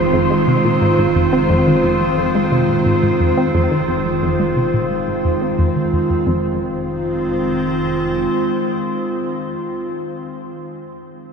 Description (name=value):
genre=ambient, sequencer-driven space music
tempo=88 BPM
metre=4/4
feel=straight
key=F minor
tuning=A4 = 437 Hz
part: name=evolving wavetable pad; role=sustained chords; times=0.0-9.8 s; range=Eb3 to C5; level=-17 LUFS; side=right 1 dB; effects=chorus, built-in reverb
part: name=analog pluck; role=riff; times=0.0-6.6 s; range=F2 to C4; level=-20 LUFS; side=equal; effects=chorus, ping-pong delay
part: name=fat analog bass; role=bass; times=0.0-8.3 s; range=F1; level=-34 LUFS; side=equal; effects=none
part: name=wind-like tuned noise texture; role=texture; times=0.0-6.3 s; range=C5 to C6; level=-25 LUFS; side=equal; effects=built-in reverb
room=wet huge ambient reverb, RT60 9.0 s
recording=none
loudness=-15 LUFS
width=side -6 dB against mid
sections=0.0-6.3 A section; 6.3-9.0 B section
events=fade-out on analog synth bass 0.0-6.3; filter sweep on synth arpeggio sound 0.0-6.3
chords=0.0 Fm7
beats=0.13 | 0.81 1.50 2.18 2.86 | 3.54 4.22 4.91 5.59 | 6.27 6.95 7.63 8.31